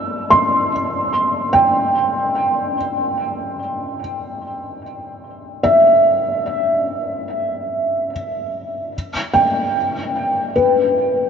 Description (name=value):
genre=ambient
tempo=free time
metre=none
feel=none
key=unclear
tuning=A4 = 442 Hz
part: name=felt-muted upright piano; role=solo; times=0.0-11.3 s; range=B4 to E6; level=-16 LUFS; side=equal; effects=analog chorus, tape echo
room=wet huge ambient reverb, RT60 8.6 s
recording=dreamy mix soaked in reverb, nothing above 8.0 kHz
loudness=-16 LUFS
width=side -7 dB against mid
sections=0.0-8.9 A section; 8.9-11.3 B section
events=none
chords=0.0 C; 8.9 G